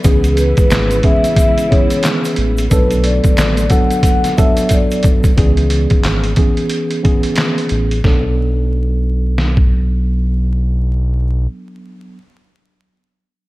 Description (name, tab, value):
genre	hip hop, boom-bap hip-hop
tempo	90 BPM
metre	4/4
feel	swing 59% on 16ths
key	B dorian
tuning	A4 = 440 Hz
part	vibraphone with soft mallets	melody	0.0-5.0 s	G#4 to F#5	-19 LUFS	left 2 dB	high-pass filter, low-pass filter, tape echo
part	mellow tine electric piano	accompaniment	0.0-12.2 s	E3 to A4	-19 LUFS	right 1 dB	medium stereo tremolo, high-pass filter, low-pass filter
part	warm studio string section	sustained chords	0.0-5.3 s	C#3 to E4	-26 LUFS	left 1 dB	high-pass filter, low-pass filter
part	round analog bass	bass	0.0-11.5 s	G#1 to C#2	-15 LUFS	equal	none
part	trip hop sampler-style drum kit	drums	0.0-9.7 s	handclaps, hi-hat, kick drum, snare drum	-14 LUFS	equal	none
part	egg shaker	percussion	0.0-5.4 s	none	-35 LUFS	left 4 dB	none
room	small room ambience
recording	vinyl crackle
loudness	-12 LUFS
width	side -18 dB against mid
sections	0.0-5.4 A section; 5.4-8.0 B section; 8.0-10.7 C section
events	drum fill 4.7-5.4; filter sweep on tine electric piano 5.4-8.0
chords	0.0 C#m7; 2.7 Bm7; 5.4 C#m7; 8.0 Bm7